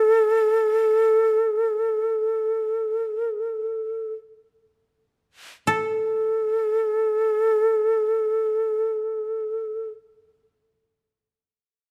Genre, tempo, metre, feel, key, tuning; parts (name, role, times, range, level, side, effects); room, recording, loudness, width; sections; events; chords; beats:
japanese traditional, Japanese chamber music; free time; A4 = 440 Hz
breathy shakuhachi; melody; 0.0-9.9 s; A4; -23 LUFS; equal
koto; second line; 0.0-9.9 s; A4; -27 LUFS; equal
light reverb; close, detailed microphones; -23 LUFS; mono
0.0-5.7 A section; 5.7-11.7 B section
slowing down 0.0-5.7
free time